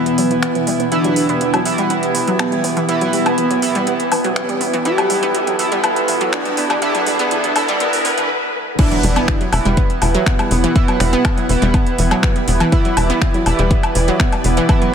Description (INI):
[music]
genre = melodic techno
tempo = 122 BPM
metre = 4/4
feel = straight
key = E minor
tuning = A4 = 443 Hz
[part]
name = wide unison lead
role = melody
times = 0.0-14.9 s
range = B3 to G4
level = -22 LUFS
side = equal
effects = sidechain pumping, tape echo
[part]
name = lush unison pad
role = sustained chords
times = 0.0-14.9 s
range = E3 to F#5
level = -25 LUFS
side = equal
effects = chorus, sidechain pumping
[part]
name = wide unison pluck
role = arpeggios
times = 0.0-14.9 s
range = E3 to B3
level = -22 LUFS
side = equal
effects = sidechain pumping, digital delay
[part]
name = sync-sweep polysynth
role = stabs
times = 0.0-14.9 s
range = E3 to E4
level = -21 LUFS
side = right 3 dB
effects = chorus, sidechain pumping, digital delay
[part]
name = swarming drone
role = drone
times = 0.0-8.3 s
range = E2 to B2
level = -33 LUFS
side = equal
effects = built-in reverb, sidechain pumping
[part]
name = house drum kit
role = drums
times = 0.1-14.9 s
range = crash cymbal, finger snaps, hi-hat, woodblock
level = -22 LUFS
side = left 1 dB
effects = sidechain pumping on hats, sidechain pumping on perc, sidechain pumping on cymbals
[part]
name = riser and impact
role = sound effects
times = 4.3-10.8 s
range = none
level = -25 LUFS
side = left 1 dB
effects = none
[part]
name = electronic kick drum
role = drums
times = 8.8-14.8 s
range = none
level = -16 LUFS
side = equal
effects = none
[part]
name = tight sequencer bass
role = bass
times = 9.0-14.6 s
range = E1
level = -17 LUFS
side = equal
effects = sidechain pumping
[sound]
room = moderate lush hall reverb, RT60 2.7 s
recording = high-pass filter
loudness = -14 LUFS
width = side -7 dB against mid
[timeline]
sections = 0.0-8.8 A section; 8.8-14.9 B section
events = build-up 0.0-8.8; filter sweep on synth arpeggio sound 0.0-8.8; filter sweep on analog synth lead 0.0-8.8; filter sweep on analog synth pad 0.0-8.8; filter sweep 0.0-8.8; riser 4.3-8.3; stop 8.3-8.8; drop 8.8-14.9; impact 8.8-10.8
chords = 0.0 Emadd9